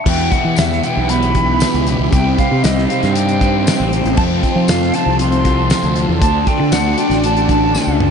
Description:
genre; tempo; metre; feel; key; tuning
psychedelic rock; 117 BPM; 4/4; straight; unclear; A4 = 441 Hz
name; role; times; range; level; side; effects
silver concert flute; melody; 0.1-8.0 s; Eb5 to C6; -19 LUFS; right 1 dB; diffuse ambient delay
rich studio string section; sustained chords; 0.1-8.1 s; B3 to D5; -23 LUFS; right 2 dB; none
fuzz guitar; riff; 0.1-8.1 s; E2 to D4; -18 LUFS; left 1 dB; distortion, phaser
fuzz fingered electric bass; bass; 0.1-8.1 s; A1 to F3; -18 LUFS; equal; overdrive
damped 70s drum kit; drums; 0.1-8.1 s; crash cymbal, hi-hat, kick drum, snare drum, toms; -20 LUFS; equal; none
tambourine; percussion; 0.6-7.9 s; none; -33 LUFS; left 7 dB; none
room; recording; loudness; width
moderate huge ambient reverb, RT60 8.1 s; dreamy mix soaked in reverb, nothing above 10.3 kHz; -12 LUFS; side -6 dB against mid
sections
0.1-8.1 A section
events
drum fill 7.7-8.1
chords
0.1 Em; 2.1 Cm; 4.2 F; 6.2 D

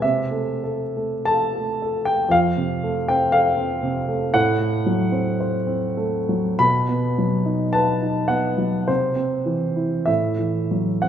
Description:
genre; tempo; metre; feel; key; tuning
classical, romantic character piece for solo piano; 45-60 BPM; 2/4; rubato; unclear; A4 = 440 Hz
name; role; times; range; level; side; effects
warm baby grand piano; solo; 0.0-11.1 s; F2 to B5; -19 LUFS; equal; none
room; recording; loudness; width
moderate scoring stage reverb, RT60 2.0 s; minimal, uncompressed stereo recording; -19 LUFS; side -9 dB against mid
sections
0.0-11.1 A section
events
none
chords
0.0 Am/C; 2.3 F; 4.3 F#dim/A; 6.6 B; 8.9 C; 10.1 F#m7/A

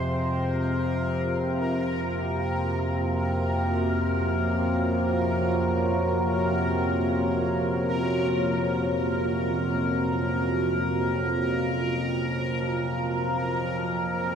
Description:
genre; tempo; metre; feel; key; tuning
dark ambient drone; free time; none; none; unclear; A4 = 440 Hz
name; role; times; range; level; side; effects
deep dark ambient pad; sustained chords; 0.0-14.3 s; Bb3 to Db5; -28 LUFS; right 2 dB; chorus, built-in reverb, shimmer reverb
analog drone; drone; 0.0-14.3 s; F2 to C3; -26 LUFS; equal; chorus
bubbling stepped-filter texture; texture; 0.0-14.3 s; Bb4; -31 LUFS; left 1 dB; chorus, built-in reverb, shimmer reverb
room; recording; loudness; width
wet huge ambient reverb, RT60 7.3 s; none; -24 LUFS; side -7 dB against mid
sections
0.0-14.3 A section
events
none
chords
0.0 Gb/F

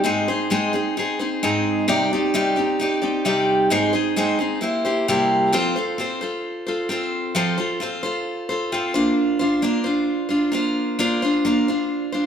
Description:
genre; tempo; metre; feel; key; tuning
rock; 132 BPM; 4/4; straight; C minor; A4 = 440 Hz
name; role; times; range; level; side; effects
picked steel-string acoustic guitar; solo; 0.0-12.3 s; Ab2 to D5; -19 LUFS; equal; none
room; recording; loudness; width
wet large studio reverb, RT60 1.2 s; band playing live in one room; -19 LUFS; side -8 dB against mid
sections
0.0-5.5 A section; 5.5-12.3 B section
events
none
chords
0.1 Ab; 1.9 Cmadd9; 3.7 Ab; 4.6 C7; 5.5 F; 8.9 Bbadd9

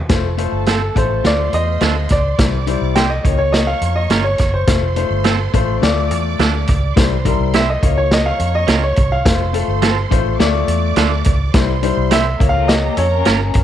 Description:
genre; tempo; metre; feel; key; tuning
uptempo 1960s-style soul; 105 BPM; 4/4; straight; F major; A4 = 437 Hz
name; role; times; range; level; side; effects
warm symphonic string section; second line; 0.1-13.6 s; A4 to D6; -26 LUFS; right 12 dB; none
bright upright piano; accompaniment; 0.1-13.3 s; G3 to F5; -22 LUFS; left 12 dB; none
vintage muted fingered electric bass; bass; 0.1-13.6 s; F1 to F2; -19 LUFS; equal; none
vintage drum kit; drums; 0.1-13.6 s; hi-hat, kick drum, snare drum; -17 LUFS; equal; none
clear baby grand piano; melody; 0.7-13.2 s; A4 to G5; -20 LUFS; equal; none
semi-hollow electric guitar; stabs; 0.7-13.4 s; A3 to C5; -21 LUFS; right 14 dB; none
electric guitar through a small old amp; riff; 12.5-13.6 s; A3 to Bb4; -23 LUFS; left 12 dB; tremolo
room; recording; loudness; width
light reverb, small room ambience; 1960s-style stereo with parts hard left and right; -13 LUFS; side -11 dB against mid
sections
0.1-13.6 A section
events
grand piano solo 0.1-13.6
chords
0.1 F; 1.2 Dm; 2.4 C; 3.2 Bbm/Db; 4.7 F; 5.8 Dm; 7.0 C; 7.8 Bbm/Db; 9.3 F; 10.4 Dm; 11.5 C; 12.4 Bbm/Db

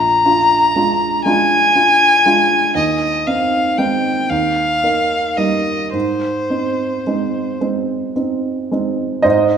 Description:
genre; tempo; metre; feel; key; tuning
classical, romantic duo for violin and grand piano; 35-41 BPM (dotted quarters); 6/8; rubato; Ab major; A4 = 440 Hz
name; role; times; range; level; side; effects
warm violin; melody; 0.0-7.6 s; C5 to Bb5; -14 LUFS; left 2 dB; none
warm baby grand piano; accompaniment; 0.0-9.6 s; Bb1 to Eb5; -18 LUFS; right 3 dB; none
room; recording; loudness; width
wet scoring stage reverb, RT60 1.6 s; minimal, uncompressed stereo recording; -13 LUFS; side -7 dB against mid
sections
0.0-9.2 A section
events
none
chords
0.0 Bb7; 2.8 Ab/Eb; 4.3 Eb; 5.9 Ab

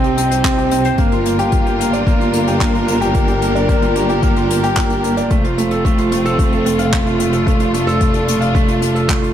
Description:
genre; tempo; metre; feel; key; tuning
piano and strings electronica; 111 BPM; 4/4; straight; unclear; A4 = 438 Hz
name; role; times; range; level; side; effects
clear studio string section; sustained chords; 0.0-9.3 s; C3 to Bb4; -22 LUFS; left 2 dB; shimmer reverb
felt-muted upright piano; riff; 0.0-9.3 s; A3 to G5; -16 LUFS; right 2 dB; tape echo, shimmer reverb
dark studio double bass section; bass; 0.0-9.3 s; F1 to C2; -21 LUFS; equal; tube saturation, sidechain pumping
jazz brush drum kit; drums; 0.0-9.3 s; handclaps, hi-hat; -25 LUFS; left 2 dB; none
electronic kick drum; drums; 0.4-9.2 s; none; -17 LUFS; left 1 dB; overdrive
room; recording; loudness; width
light reverb, small room ambience; none; -13 LUFS; side -10 dB against mid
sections
0.0-9.3 A section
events
none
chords
0.0 Cm; 1.0 Gm7; 5.3 F

